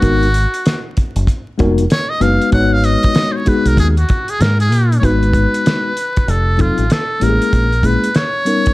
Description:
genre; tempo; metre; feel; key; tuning
hip hop, jazz-hop; 96 BPM; 4/4; swing 63% on 16ths; G# dorian; A4 = 440 Hz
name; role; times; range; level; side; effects
trumpet with metal mute; melody; 0.0-8.7 s; F4 to F#5; -18 LUFS; equal; none
mellow tine electric piano; accompaniment; 0.0-8.7 s; Gb3 to C#5; -17 LUFS; left 2 dB; medium stereo tremolo
deep dub fingered electric bass; bass; 0.0-8.0 s; E#1 to A#2; -14 LUFS; equal; none
cloth-damped thuddy drum kit; drums; 0.0-8.7 s; hi-hat, kick drum, snare drum; -17 LUFS; equal; none
room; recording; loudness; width
studio ambience; dark, warm production, vinyl crackle; -12 LUFS; side -19 dB against mid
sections
0.0-5.0 A section; 5.0-8.7 B section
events
muted trumpet solo 0.0-5.0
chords
0.0 G#m7; 6.3 F7b9; 7.5 A#m7b5

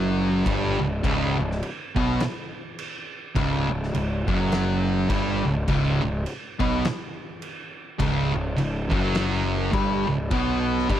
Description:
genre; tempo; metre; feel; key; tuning
stoner and doom metal; 103 BPM; 4/4; swing 59% on 8ths; unclear; A4 = 440 Hz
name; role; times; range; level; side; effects
fuzz guitar; riff; 0.0-11.0 s; C#2 to B3; -29 LUFS; left 10 dB; distortion
thick fuzz guitar; riff; 0.0-11.0 s; C#2 to B3; -25 LUFS; right 4 dB; distortion
fuzz picked electric bass; bass; 0.0-11.0 s; C#1 to B1; -28 LUFS; left 1 dB; overdrive
oversized low-tuned drum kit; drums; 0.5-11.0 s; crash cymbal, kick drum, snare drum; -30 LUFS; equal; none
room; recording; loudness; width
small room ambience; none; -22 LUFS; side -11 dB against mid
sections
0.0-11.0 A section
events
none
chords
0.0 C#5

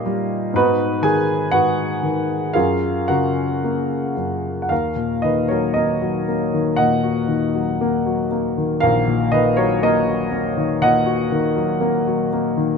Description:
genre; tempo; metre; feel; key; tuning
classical, lyrical solo piano; 54-62 BPM; 4/4; rubato; F# major, Eb minor from 4.7 s; A4 = 440 Hz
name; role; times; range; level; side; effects
warm baby grand piano; solo; 0.0-12.8 s; Bb1 to G#5; -17 LUFS; left 1 dB; none
room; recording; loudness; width
light reverb; close, detailed microphones; -17 LUFS; side -5 dB against mid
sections
0.0-4.7 A section; 4.7-12.8 B section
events
none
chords
0.0 D#7/A#; 0.5 G#m7; 2.5 F#maj9; 4.7 Ebm

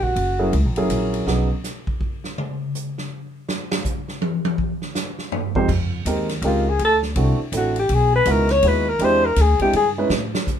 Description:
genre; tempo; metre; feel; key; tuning
jazz, small-group swing and bop; 163 BPM; 3/4; swing 63% on 8ths; unclear; A4 = 440 Hz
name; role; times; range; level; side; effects
breathy alto saxophone; melody; 0.0-0.5, 6.5-9.9 s; F4 to Db5; -18 LUFS; left 2 dB; none
warm grand piano; accompaniment; 0.0-1.5, 5.6-10.1 s; F2 to C5; -22 LUFS; right 2 dB; none
upright bass; bass; 0.0-1.5, 5.7-10.3 s; Gb1 to A2; -21 LUFS; equal; none
swinging big-band drum kit; drums; 0.0-10.6 s; crash cymbal, hi-hat, kick drum, ride cymbal, snare drum, toms; -26 LUFS; equal; none
room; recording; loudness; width
light reverb; minimal, uncompressed stereo recording; -18 LUFS; side -9 dB against mid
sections
0.0-5.7 A section; 5.7-10.6 A section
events
alto saxophone solo 0.0-10.6; drum solo 1.3-5.7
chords
0.2 Gb7; 1.3 B6; 2.4 N.C.; 3.5 Ab6; 5.7 Fm11; 6.8 D9; 7.9 Emaj7; 9.0 E7alt

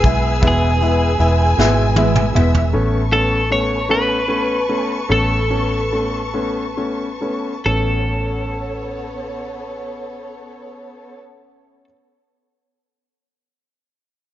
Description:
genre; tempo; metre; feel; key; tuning
six-eight pop ballad; 44-52 BPM (dotted quarters); 6/8; straight; A major; A4 = 440 Hz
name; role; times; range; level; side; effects
twelve-string electric guitar; melody; 0.0-11.8 s; G#4 to C#5; -21 LUFS; equal; slapback echo
dark studio violin section; second line; 0.0-2.7 s; E5 to G#5; -25 LUFS; left 1 dB; none
warm grand piano; accompaniment; 0.0-11.8 s; G#3 to E4; -22 LUFS; left 2 dB; none
warm studio string section; sustained chords; 0.0-11.1 s; B3 to E6; -27 LUFS; left 1 dB; none
fingerpicked plugged-in steel-string acoustic guitar; arpeggios; 0.0-2.7 s; E2 to G#4; -25 LUFS; right 6 dB; slapback echo
vintage muted fingered electric bass; bass; 0.0-11.8 s; E1 to B1; -19 LUFS; equal; none
soft brush drum kit; drums; 0.0-2.7 s; hi-hat, kick drum, snare drum, toms; -19 LUFS; right 1 dB; none
room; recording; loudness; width
light reverb, small room reverb; nothing above 7.5 kHz; -15 LUFS; side -13 dB against mid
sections
0.0-2.7 A section; 2.7-7.7 B section; 7.7-10.4 C section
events
drum fill 1.6-2.7; slowing down 2.7-7.7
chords
0.0 E; 2.7 Aadd9

